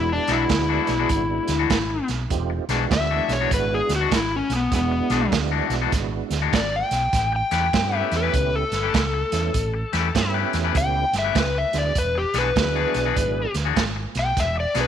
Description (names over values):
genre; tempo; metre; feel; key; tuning
electric blues shuffle; 100 BPM; 4/4; swing 63% on 8ths; E mixolydian; A4 = 440 Hz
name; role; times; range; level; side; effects
overdriven slide guitar; melody; 0.0-14.9 s; B3 to G5; -23 LUFS; left 3 dB; none
tonewheel organ; accompaniment; 0.0-14.9 s; F#3 to A4; -30 LUFS; right 13 dB; slow rotary speaker, overdrive, chorus vibrato
fingered electric bass; bass; 0.0-14.9 s; E1 to G2; -26 LUFS; equal; none
electric guitar at the edge of break-up; riff; 0.1-14.9 s; E3 to B4; -27 LUFS; left 15 dB; none
crunchy breakbeat drum kit; drums; 0.3-14.9 s; hi-hat, kick drum, snare drum; -25 LUFS; right 4 dB; none
room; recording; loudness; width
light reverb, small room ambience; 1960s-style stereo with parts hard left and right; -20 LUFS; side -9 dB against mid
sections
0.0-14.9 A section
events
electric slide guitar solo 0.0-14.9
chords
0.0 E9; 7.1 A9; 12.0 E9